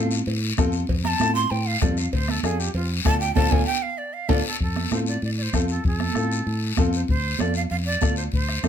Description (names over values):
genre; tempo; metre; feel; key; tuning
latin, cumbia; 194 BPM; 4/4; straight; unclear; A4 = 440 Hz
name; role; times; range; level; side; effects
bright shakuhachi; melody; 0.0-8.7 s; F4 to C6; -28 LUFS; right 2 dB; plate reverb
clear upright piano; accompaniment; 0.0-8.7 s; C4 to A4; -28 LUFS; left 4 dB; none
fingered electric bass; bass; 0.0-8.7 s; D2 to A2; -26 LUFS; equal; none
guiro; percussion; 0.1-8.7 s; none; -32 LUFS; left 6 dB; none
cowbell and timbales; percussion; 0.3-4.4 s; none; -36 LUFS; right 6 dB; none
bombo; percussion; 0.6-8.7 s; none; -24 LUFS; left 2 dB; none
congas; percussion; 0.6-8.7 s; none; -30 LUFS; right 8 dB; none
room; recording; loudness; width
moderate small room reverb, RT60 0.5 s; none; -21 LUFS; side -9 dB against mid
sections
0.0-4.6 A section; 4.6-8.7 B section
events
shakuhachi solo 0.0-4.6; drum fill 3.4-4.6; band accent 3.4-4.6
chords
0.0 F; 2.1 Dm; 4.6 F; 7.1 Dm